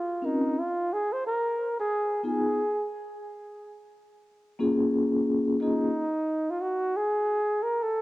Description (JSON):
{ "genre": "hip hop", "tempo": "89 BPM", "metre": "4/4", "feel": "swing 59% on 16ths", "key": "Bb minor", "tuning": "A4 = 442 Hz", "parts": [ { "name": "breathy flugelhorn", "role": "melody", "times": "0.0-8.0 s", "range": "Eb4 to C5", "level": "-27 LUFS", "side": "equal", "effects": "cassette tape, analog delay" }, { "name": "vibraphone with soft mallets", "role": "accompaniment", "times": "0.2-5.9 s", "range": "Bb3 to Bb4", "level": "-25 LUFS", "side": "left 1 dB", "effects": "cassette tape" } ], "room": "moderate spring reverb, RT60 1.2 s, small room ambience", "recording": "home recording on cassette", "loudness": "-25 LUFS", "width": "side -18 dB against mid", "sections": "0.0-8.0 A section", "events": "none", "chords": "0.0 Bbm; 1.2 B6; 3.9 Bbm7; 6.6 N.C." }